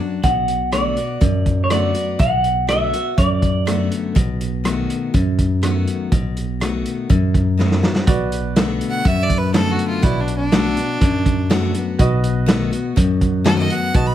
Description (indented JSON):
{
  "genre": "honky-tonk and classic country",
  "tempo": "122 BPM",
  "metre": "4/4",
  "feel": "straight",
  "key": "B minor",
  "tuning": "A4 = 439 Hz",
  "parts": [
    { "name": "bright upright piano", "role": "accompaniment", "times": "0.0-0.2, 8.1-14.1 s", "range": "F#4 to D#5", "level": "-27 LUFS", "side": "right 5 dB", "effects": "none" },
    { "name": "picked steel-string acoustic guitar", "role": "accompaniment", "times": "0.0-14.1 s", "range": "F#2 to F#4", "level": "-22 LUFS", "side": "left 5 dB", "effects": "none" },
    { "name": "electric guitar through a small old amp", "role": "second line", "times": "0.2-3.9 s", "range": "C#5 to F#5", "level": "-20 LUFS", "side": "right 1 dB", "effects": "tape echo" },
    { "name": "tine electric piano", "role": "bass", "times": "0.2-14.1 s", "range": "B1 to F#2", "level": "-21 LUFS", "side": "right 1 dB", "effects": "slow stereo tremolo" },
    { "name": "vintage drum kit", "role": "drums", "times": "0.2-14.1 s", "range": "hi-hat, kick drum, rim click, snare drum", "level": "-19 LUFS", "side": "right 1 dB", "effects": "none" },
    { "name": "clear fiddle", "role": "melody", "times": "8.9-14.1 s", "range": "D4 to B5", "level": "-23 LUFS", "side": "right 1 dB", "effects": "plate reverb" }
  ],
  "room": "light reverb",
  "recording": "none",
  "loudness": "-16 LUFS",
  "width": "side -11 dB against mid",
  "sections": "0.2-8.1 A section; 8.1-14.1 B section",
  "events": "clean electric guitar solo 0.2-8.1; drum fill 7.6-8.1; fiddle solo 8.1-14.1",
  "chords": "0.2 Bm7; 4.2 B7; 8.1 Bm7; 12.0 B7"
}